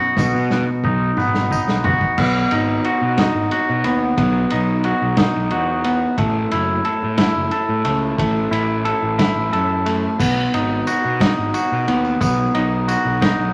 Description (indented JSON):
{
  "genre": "psychedelic rock",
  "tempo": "60 BPM (dotted quarters)",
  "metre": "6/8",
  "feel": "straight",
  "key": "unclear",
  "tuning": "A4 = 440 Hz",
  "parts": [
    { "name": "twangy electric guitar", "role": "riff", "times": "0.0-13.5 s", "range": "B2 to A4", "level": "-21 LUFS", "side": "equal", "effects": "none" },
    { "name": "fuzz picked electric bass", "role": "bass", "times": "0.2-13.5 s", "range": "F#1 to B2", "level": "-26 LUFS", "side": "equal", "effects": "overdrive" },
    { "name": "vintage drum kit", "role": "drums", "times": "0.2-13.4 s", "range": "crash cymbal, kick drum, ride cymbal, snare drum, toms", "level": "-25 LUFS", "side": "equal", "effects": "none" },
    { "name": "tambourine", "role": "percussion", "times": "0.2-1.8, 10.2-13.0 s", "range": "none", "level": "-41 LUFS", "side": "equal", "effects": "none" }
  ],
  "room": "wet large studio reverb, RT60 1.2 s",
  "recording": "vinyl crackle",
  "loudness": "-19 LUFS",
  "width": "mono",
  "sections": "0.0-2.2 A section; 2.2-13.5 B section",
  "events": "drum fill 0.2-2.2",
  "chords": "0.0 B; 6.2 A5; 10.2 B",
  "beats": "| 0.17 1.17 | 2.17 3.18 | 4.18 5.18 | 6.18 7.19 | 8.19 9.20 | 10.20 11.21 | 12.21 13.21"
}